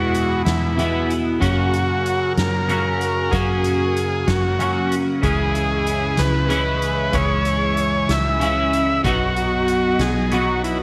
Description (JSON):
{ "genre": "psychedelic rock", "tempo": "63 BPM (dotted quarters)", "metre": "6/8", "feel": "straight", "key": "unclear", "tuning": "A4 = 440 Hz", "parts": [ { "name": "combo organ", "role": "melody", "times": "0.0-10.8 s", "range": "E4 to E5", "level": "-24 LUFS", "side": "equal", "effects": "slapback echo" }, { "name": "phased string machine", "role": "sustained chords", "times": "0.0-10.8 s", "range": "F#4 to D#6", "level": "-38 LUFS", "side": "equal", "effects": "none" }, { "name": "twelve-string electric guitar", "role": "riff", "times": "0.0-10.8 s", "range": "E2 to F#4", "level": "-24 LUFS", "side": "equal", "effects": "phaser, double-tracked" }, { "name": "fingered electric bass", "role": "bass", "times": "0.0-10.8 s", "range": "B1 to F#2", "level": "-27 LUFS", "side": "equal", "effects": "none" }, { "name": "soft-mallet drum kit", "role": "drums", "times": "0.1-10.8 s", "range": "hi-hat, kick drum, snare drum", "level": "-31 LUFS", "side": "equal", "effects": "none" } ], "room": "light reverb, small room ambience", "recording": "none", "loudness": "-20 LUFS", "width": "mono", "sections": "0.0-10.8 A section", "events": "none", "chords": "0.0 E; 1.4 F#; 5.2 C#m; 9.1 B" }